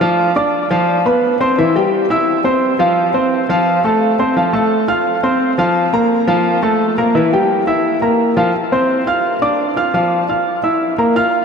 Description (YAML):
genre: latin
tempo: 172 BPM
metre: 4/4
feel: straight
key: F major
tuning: A4 = 437 Hz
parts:
  - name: clear grand piano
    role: solo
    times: 0.0-11.4 s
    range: E3 to F6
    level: -12 LUFS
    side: equal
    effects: ping-pong delay
room: wet huge ambient reverb, RT60 8.2 s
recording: dreamy mix soaked in reverb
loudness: -12 LUFS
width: side -6 dB against mid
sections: 0.0-8.5 A section; 8.5-11.4 B section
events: none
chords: 0.2 Bdim/F; 1.6 C; 3.0 F; 5.8 Bb5; 7.2 Edim; 8.5 F5; 9.2 Dm; 9.9 N.C.; 10.6 Bb5